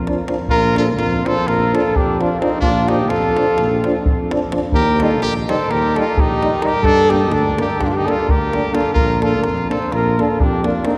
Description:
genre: balkan folk, Balkan brass band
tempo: 255 BPM (eighths)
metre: 9/8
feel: straight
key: Bb major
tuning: A4 = 436 Hz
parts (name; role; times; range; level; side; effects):
- dark cornet; melody; 0.0-11.0 s; Eb4 to C5; -21 LUFS; equal; none
- brilliant trumpet; second line; 0.0-11.0 s; C4 to A4; -27 LUFS; equal; none
- mellow tuba; bass; 0.0-10.8 s; Bb1 to G2; -23 LUFS; equal; none
- clear euphonium; accompaniment; 0.1-10.9 s; F3 to Bb3; -28 LUFS; equal; none
- warm French horn; accompaniment; 0.1-10.9 s; D4 to Eb4; -28 LUFS; equal; none
- davul; percussion; 0.1-10.9 s; none; -25 LUFS; equal; none
room: wet cathedral reverb, RT60 4.9 s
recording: recorded in a church or concert hall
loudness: -17 LUFS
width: mono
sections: 0.5-11.0 A section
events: none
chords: 0.5 Bb; 4.7 Eb; 6.8 Gm; 8.9 Bb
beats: 0.02 0.25 | 0.49 0.72 0.96 1.19 1.43 1.66 1.90 2.13 2.37 | 2.60 2.84 3.08 3.31 3.54 3.78 4.01 4.25 4.49 | 4.72 4.96 5.19 5.43 5.66 5.90 6.13 6.37 6.60 | 6.83 7.07 7.30 7.54 7.77 8.01 8.24 8.48 8.71 | 8.95 9.18 9.41 9.65 9.88 10.12 10.35 10.59 10.82

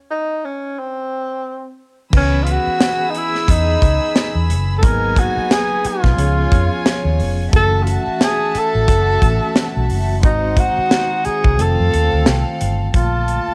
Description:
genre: lush 1970s-style soul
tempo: 89 BPM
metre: 4/4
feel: swing 58% on 16ths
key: C# minor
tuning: A4 = 442 Hz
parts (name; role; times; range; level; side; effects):
- mellow tenor saxophone; melody; 0.1-13.5 s; B#3 to A#4; -22 LUFS; equal; cassette tape, plate reverb
- warm studio violin section; second line; 2.1-13.5 s; B3 to E6; -28 LUFS; equal; cassette tape, plate reverb
- mellow tine electric piano; accompaniment; 2.1-13.5 s; C#3 to B4; -29 LUFS; equal; cassette tape, plate reverb
- vintage muted fingered electric bass; bass; 2.1-13.5 s; E#1 to E#2; -20 LUFS; equal; none
- modern studio drum kit; drums; 2.1-13.5 s; crash cymbal, hi-hat, kick drum, snare drum; -19 LUFS; equal; cassette tape
room: light reverb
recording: home recording on cassette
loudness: -17 LUFS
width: mono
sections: 0.0-2.1 A section; 2.1-12.9 B section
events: stop 0.0-2.1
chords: 0.0 N.C.; 2.1 C#m9; 4.8 G#m9; 6.2 C#7; 7.5 F#m7; 10.2 G#7; 11.6 F7; 12.9 A#maj7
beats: 0.10 0.78 1.45 | 2.13 2.80 3.48 4.15 | 4.83 5.50 6.18 6.85 | 7.53 8.21 8.88 9.56 | 10.23 10.91 11.59 12.26 | 12.94

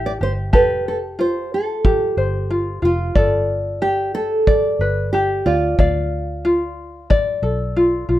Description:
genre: acoustic pop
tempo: 91 BPM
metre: 4/4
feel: swing 55% on 16ths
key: G mixolydian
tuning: A4 = 438 Hz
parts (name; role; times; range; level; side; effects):
- nylon-string guitar; melody; 0.0-7.4 s; F4 to D5; -20 LUFS; right 2 dB; plate reverb
- tenor ukulele; accompaniment; 0.0-8.2 s; E4 to F5; -20 LUFS; left 2 dB; plate reverb
- vintage muted fingered electric bass; bass; 0.0-8.2 s; F1 to D2; -23 LUFS; equal; none
- kick drum; drums; 0.5-7.3 s; none; -17 LUFS; equal; none
room: moderate studio ambience, RT60 0.5 s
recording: rough home demo mix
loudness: -16 LUFS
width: side -14 dB against mid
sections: 0.0-8.2 A section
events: none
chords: 0.0 C6 (rootless); 0.5 Fadd9; 3.2 Gadd9; 5.5 Dm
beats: | 0.54 1.19 1.85 2.50 | 3.16 3.82 4.47 5.13 | 5.79 6.45 7.10 7.76

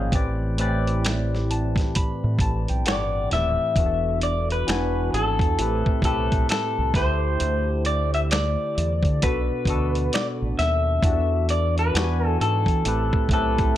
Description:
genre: R&B, neo-soul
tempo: 66 BPM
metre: 4/4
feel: swing 62% on 16ths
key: A dorian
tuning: A4 = 439 Hz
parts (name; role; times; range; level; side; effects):
- barky tine electric piano; accompaniment; 0.0-13.8 s; A2 to B5; -27 LUFS; left 1 dB; overdrive, phaser
- deep dub fingered electric bass; bass; 0.0-13.7 s; D#1 to E3; -24 LUFS; equal; none
- dusty soul sampler-style drum kit; drums; 0.1-13.7 s; finger snaps, hi-hat, kick drum, snare drum; -24 LUFS; equal; none
- electric guitar through a small old amp; melody; 2.9-13.8 s; A4 to E5; -25 LUFS; left 2 dB; spring reverb, plate reverb
room: light reverb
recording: none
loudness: -20 LUFS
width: side -12 dB against mid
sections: 0.0-3.8 A section; 3.8-13.8 B section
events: tine electric piano fill 1.0-3.8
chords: 0.1 Am11; 3.8 E7sus4; 4.7 E7; 5.6 Am9; 6.9 D9sus4; 9.2 Bm7; 11.0 E7sus4; 11.9 E7; 12.8 Am9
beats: | 0.12 1.03 1.94 2.85 | 3.76 4.67 5.57 6.48 | 7.39 8.30 9.21 10.12 | 11.03 11.94 12.85 13.76

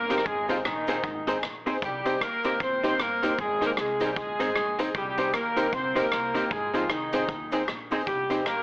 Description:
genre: ska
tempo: 154 BPM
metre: 4/4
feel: swing 60% on 8ths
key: unclear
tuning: A4 = 440 Hz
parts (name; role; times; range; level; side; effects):
- mellow horn section; melody; 0.0-8.6 s; Eb3 to C5; -27 LUFS; equal; tape echo
- upright bass; bass; 0.0-8.6 s; G1 to Eb2; -42 LUFS; equal; none
- archtop guitar, miked and amplified; accompaniment; 0.1-8.4 s; C4 to C5; -31 LUFS; right 1 dB; tape echo
- bright upright piano; stabs; 0.1-8.4 s; Eb4 to C5; -32 LUFS; left 1 dB; tape echo
- street-band drum kit; drums; 0.1-8.6 s; hi-hat, kick drum, rim click; -33 LUFS; equal; tape echo
- cabasa; percussion; 0.1-8.6 s; none; -59 LUFS; right 1 dB; none
room: moderate small room reverb, RT60 0.5 s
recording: AM radio sound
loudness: -24 LUFS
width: side -24 dB against mid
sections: 0.0-8.6 A section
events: none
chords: 0.3 Ab; 1.8 Cm; 3.4 Ab; 5.0 Cm; 6.5 Ab; 8.1 Cm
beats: | 0.26 0.65 1.04 1.43 | 1.82 2.21 2.60 3.00 | 3.39 3.78 4.17 4.56 | 4.95 5.34 5.73 6.12 | 6.51 6.90 7.29 7.68 | 8.07 8.46

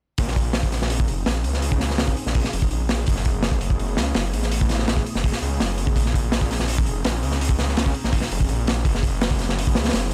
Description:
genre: drum and bass, jungle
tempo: 166 BPM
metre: 4/4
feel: straight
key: unclear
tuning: A4 = 440 Hz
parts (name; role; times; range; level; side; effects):
- airy breathy pad; sustained chords; 0.2-10.1 s; A3 to Ab4; -35 LUFS; equal; chorus
- detuned saw bass; bass; 0.2-10.1 s; F1 to Db2; -26 LUFS; equal; none
- crunchy breakbeat drum kit; drums; 0.2-10.1 s; hi-hat, kick drum, snare drum; -24 LUFS; equal; none
room: little or no reverb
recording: none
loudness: -22 LUFS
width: mono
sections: 0.2-10.1 A section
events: none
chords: 0.2 Bbm11; 3.1 Gbm11; 6.0 Bbm11; 8.9 Gbm11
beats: | 0.18 0.54 0.90 1.26 | 1.63 1.99 2.35 2.71 | 3.07 3.43 3.79 4.16 | 4.52 4.88 5.24 5.60 | 5.96 6.33 6.69 7.05 | 7.41 7.77 8.13 8.49 | 8.86 9.22 9.58 9.94

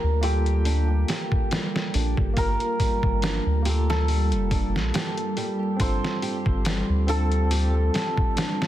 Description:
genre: trip hop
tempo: 70 BPM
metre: 4/4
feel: swing 55% on 16ths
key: G minor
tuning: A4 = 440 Hz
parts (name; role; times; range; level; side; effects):
- santur; melody; 0.0-8.7 s; G4 to C5; -30 LUFS; right 1 dB; tape echo
- bright tine electric piano; accompaniment; 0.0-8.7 s; Bb3 to Bb4; -32 LUFS; equal; tremolo, tape echo
- string machine, cellos; sustained chords; 0.0-8.7 s; G3 to G4; -32 LUFS; right 1 dB; ensemble chorus
- soft dub sub bass; bass; 0.0-7.9 s; F1 to D2; -23 LUFS; equal; none
- flamenco guitar; arpeggios; 0.2-8.6 s; G3 to G4; -34 LUFS; right 2 dB; tape echo
- trip hop sampler-style drum kit; drums; 0.2-8.7 s; hi-hat, kick drum, snare drum; -26 LUFS; equal; studio reverb
room: little or no reverb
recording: dense, heavily limited modern master, vinyl crackle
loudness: -21 LUFS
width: side -13 dB against mid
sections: 0.0-8.7 A section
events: none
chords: 0.0 Gm7; 5.8 F/G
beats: 0.66 1.51 | 2.37 3.23 4.08 4.94 | 5.80 6.66 7.51 8.37

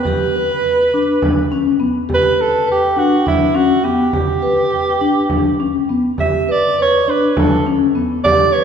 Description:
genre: contemporary instrumental, chamber music in an uneven meter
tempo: 206 BPM (eighths)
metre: 7/8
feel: straight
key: unclear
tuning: A4 = 440 Hz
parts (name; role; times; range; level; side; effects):
- mellow soprano saxophone; melody; 0.0-8.6 s; E4 to E5; -17 LUFS; right 3 dB; none
- vibraphone with soft mallets; arpeggios; 0.1-8.6 s; B3 to B4; -16 LUFS; left 2 dB; none
- frame drum; percussion; 0.1-8.5 s; none; -22 LUFS; right 1 dB; none
room: wet concert hall reverb, RT60 2.5 s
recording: heard from further back in the room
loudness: -13 LUFS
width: side -7 dB against mid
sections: 0.0-8.6 A section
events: none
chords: 0.0 Bmadd9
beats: | 0.07 0.36 0.65 0.94 1.23 1.52 1.81 | 2.11 2.40 2.69 2.98 3.27 3.56 3.85 | 4.14 4.43 4.72 5.01 5.30 5.60 5.90 | 6.19 6.49 6.79 7.08 7.37 7.67 7.96 | 8.25 8.54

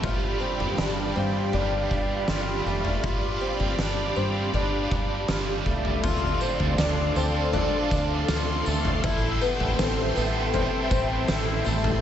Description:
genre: dream pop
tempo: 80 BPM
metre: 4/4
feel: straight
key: D dorian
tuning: A4 = 440 Hz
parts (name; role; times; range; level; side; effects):
- biting overdriven guitar; accompaniment; 0.0-12.0 s; A2 to B4; -31 LUFS; right 4 dB; harmonic tremolo, lush chorus
- phased string machine; sustained chords; 0.0-12.0 s; G4 to C6; -30 LUFS; equal; ensemble chorus, phaser
- fingerpicked twelve-string acoustic guitar; arpeggios; 0.0-12.0 s; A3 to F4; -29 LUFS; left 3 dB; wide subtle chorus, tape echo
- deep dub fingered electric bass; bass; 0.0-12.0 s; F1 to G2; -29 LUFS; equal; none
- oversized low-tuned drum kit; drums; 0.0-12.0 s; crash cymbal, kick drum, snare drum, tambourine, toms; -29 LUFS; equal; none
room: light reverb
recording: nothing above 8.0 kHz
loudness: -23 LUFS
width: side -10 dB against mid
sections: 0.0-6.0 A section; 6.0-12.0 B section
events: none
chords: 0.0 G7; 6.0 Dm7; 9.0 Am7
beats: | 0.03 0.78 1.53 2.28 | 3.03 3.78 4.53 5.28 | 6.03 6.78 7.53 8.28 | 9.03 9.78 10.53 11.28

